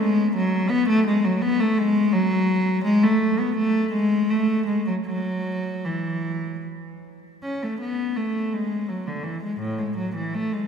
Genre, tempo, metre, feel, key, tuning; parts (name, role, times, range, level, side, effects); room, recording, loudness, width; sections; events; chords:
classical, baroque-style suite movement for unaccompanied cello; 74-86 BPM; 3/4; rubato; A major from 7.4 s; A4 = 440 Hz
rich cello; solo; 0.0-10.7 s; A2 to C#4; -21 LUFS; equal
wet church reverb, RT60 3.9 s; minimal, uncompressed stereo recording; -21 LUFS; side -7 dB against mid
0.0-7.4 A section; 7.4-10.7 A section